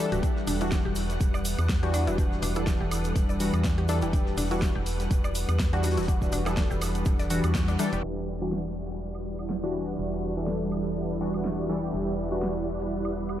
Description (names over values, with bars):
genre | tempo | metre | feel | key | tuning
deep house | 123 BPM | 4/4 | swing 55% on 16ths | E minor | A4 = 440 Hz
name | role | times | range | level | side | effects
soft string machine | sustained chords | 0.0-13.4 s | G3 to F#5 | -35 LUFS | equal | ensemble chorus, sidechain pumping
mallet-like synth pluck | arpeggios | 0.0-8.0 s | D4 to D5 | -38 LUFS | left 2 dB | chorus, phaser, sidechain pumping, diffuse ambient delay
warm analog keys | stabs | 0.0-12.5 s | E3 to A4 | -30 LUFS | left 1 dB | chorus, phaser, vintage 12-bit sampler grit, sidechain pumping, low-pass filter, diffuse ambient delay
organ-like FM bass | bass | 0.1-13.4 s | D1 to E2 | -30 LUFS | equal | sidechain pumping
deep house drum kit | drums | 0.1-13.4 s | crash cymbal, hi-hat, snare drum, woodblock | -37 LUFS | equal | none
tube shaker | percussion | 0.1-8.0 s | none | -42 LUFS | right 4 dB | none
damped 70s drum kit | drums | 0.2-13.3 s | hi-hat, snare drum | -48 LUFS | left 3 dB | none
electronic kick drum | drums | 0.2-7.7 s | none | -27 LUFS | equal | none
granular cloud pad | texture | 9.2-13.4 s | E4 to B4 | -37 LUFS | right 3 dB | built-in reverb, ensemble chorus, sidechain pumping
room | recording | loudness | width
moderate cathedral reverb, RT60 6.2 s | dreamy mix soaked in reverb, low-pass filter | -25 LUFS | side -12 dB against mid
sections
0.0-8.0 A section; 8.0-13.4 B section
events
band accent 7.5; filter sweep on synth keys 8.0-13.4; filter sweep on string machine 8.0-13.4; filter sweep 8.0-13.4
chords
0.0 Em9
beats
| 0.23 0.72 1.21 1.69 | 2.18 2.67 3.16 3.65 | 4.13 4.62 5.11 5.60 | 6.08 6.57 7.06 7.55 | 8.04 8.52 9.01 9.50 | 9.99 10.47 10.96 11.45 | 11.94 12.43 12.91